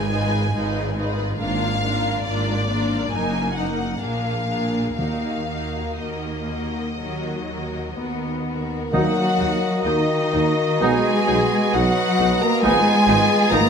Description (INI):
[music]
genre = classical, slow romantic movement for symphony orchestra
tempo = 59-71 BPM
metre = 4/4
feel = rubato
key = Eb minor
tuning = A4 = 439 Hz
[part]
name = rich studio violin section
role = melody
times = 0.0-13.7 s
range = D5 to Bb5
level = -26 LUFS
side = left 1 dB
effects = none
[part]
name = rich studio violin section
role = second line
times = 0.0-13.7 s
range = Eb4 to Cb5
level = -29 LUFS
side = left 3 dB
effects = none
[part]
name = rich studio viola section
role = accompaniment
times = 0.0-13.6 s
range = F3 to Eb4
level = -28 LUFS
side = left 1 dB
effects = none
[part]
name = rich studio cello section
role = bass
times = 0.0-13.7 s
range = Gb2 to Bb3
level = -26 LUFS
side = right 1 dB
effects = none
[part]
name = rich symphonic double bass section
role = bass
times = 0.0-13.6 s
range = Gb1 to Eb2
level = -29 LUFS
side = right 3 dB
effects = none
[part]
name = timpani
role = percussion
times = 5.0-10.3 s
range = Eb3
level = -28 LUFS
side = left 1 dB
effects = none
[part]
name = bright clarinet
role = second line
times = 8.9-13.7 s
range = F4 to Gb4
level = -29 LUFS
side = equal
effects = none
[part]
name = silver concert flute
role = second line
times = 8.9-13.7 s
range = Eb5 to Bb5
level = -27 LUFS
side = left 4 dB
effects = none
[part]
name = warm oboe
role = second line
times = 8.9-13.7 s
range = Eb5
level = -29 LUFS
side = right 2 dB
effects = none
[part]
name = dark bassoon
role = accompaniment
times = 8.9-13.7 s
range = Bb3 to B3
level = -26 LUFS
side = equal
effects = none
[part]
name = dark French horn section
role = sustained chords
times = 8.9-13.7 s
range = Eb3 to Bb3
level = -24 LUFS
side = left 3 dB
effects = none
[part]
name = warm trombone section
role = sustained chords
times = 8.9-13.0 s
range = F3 to B3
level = -27 LUFS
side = right 4 dB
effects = none
[part]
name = clear trumpet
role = stabs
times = 8.9-13.0 s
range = D#4 to Eb4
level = -27 LUFS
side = right 4 dB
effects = none
[part]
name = mellow tuba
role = bass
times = 8.9-13.7 s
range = Ab1 to Eb2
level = -28 LUFS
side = right 5 dB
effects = none
[sound]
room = moderate recital hall reverb, RT60 1.4 s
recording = none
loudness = -19 LUFS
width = side -6 dB against mid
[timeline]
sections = 0.0-8.9 A section; 8.9-13.7 A section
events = none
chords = 0.0 Fm7b5/Ab; 1.4 Bb7/Ab; 3.1 Ebm/Gb; 4.0 Bb7; 5.0 Ebm; 10.8 B6; 12.6 Fm7b5/Ab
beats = 0.55 | 1.40 2.26 3.12 4.02 | 4.98 5.99 6.99 7.97 | 8.93 9.85 10.82 11.75 | 12.64 13.52